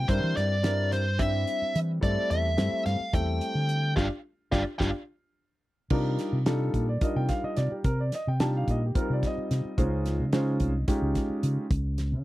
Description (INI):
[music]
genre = electric jazz fusion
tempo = 217 BPM (eighths)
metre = 7/8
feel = straight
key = G dorian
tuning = A4 = 440 Hz
[part]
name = dark smooth lead guitar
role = melody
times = 0.0-4.9 s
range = C5 to G5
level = -30 LUFS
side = equal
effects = overdrive, slapback echo
[part]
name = fingered electric bass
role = bass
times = 0.0-12.2 s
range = G1 to E3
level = -28 LUFS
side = equal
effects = none
[part]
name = warm grand piano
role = accompaniment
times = 0.1-11.6 s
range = G3 to A5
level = -30 LUFS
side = equal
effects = none
[part]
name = damped 70s drum kit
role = drums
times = 0.1-12.1 s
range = crash cymbal, hi-hat, kick drum, snare drum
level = -29 LUFS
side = equal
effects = none
[sound]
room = little or no reverb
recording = dry, close 1970s-style studio recording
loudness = -25 LUFS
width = side -17 dB against mid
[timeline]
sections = 0.0-5.9 A section; 5.9-12.2 B section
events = band accent 4.0-5.9; grand piano fill 5.1-5.9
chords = 0.1 C9/G; 2.0 Am7; 4.0 G5; 5.9 Cm11; 9.8 Dbmaj7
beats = | 0.09 0.36 0.64 0.92 1.20 1.48 1.75 | 2.03 2.31 2.58 2.86 3.14 3.42 3.69 | 3.97 4.25 4.52 4.80 5.08 5.36 5.63 | 5.91 6.18 6.46 6.74 7.01 7.29 7.57 | 7.84 8.12 8.40 8.67 8.95 9.22 9.50 | 9.78 10.05 10.33 10.61 10.88 11.16 11.43 | 11.71 11.98